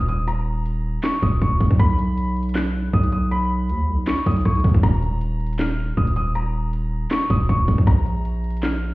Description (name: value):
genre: hip hop, trap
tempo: 158 BPM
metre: 4/4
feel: half-time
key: Eb minor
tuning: A4 = 440 Hz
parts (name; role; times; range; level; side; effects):
- felt-muted upright piano; melody; 0.0-8.9 s; Bb5 to F#6; -27 LUFS; left 1 dB; low-pass filter, tape echo
- distorted 808-style bass; bass; 0.0-8.9 s; Eb1 to D#2; -21 LUFS; equal; distortion
- trap drum kit; drums; 0.0-8.7 s; handclaps, hi-hat, kick drum, rim click, snare drum; -20 LUFS; equal; vintage 12-bit sampler grit
room: little or no reverb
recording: heard muffled through a wall, stone room reverb, EQ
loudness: -18 LUFS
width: side -19 dB against mid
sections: 0.0-8.9 A section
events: none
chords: 0.0 Eb5; 1.8 N.C.; 4.8 Eb5; 7.9 Bb5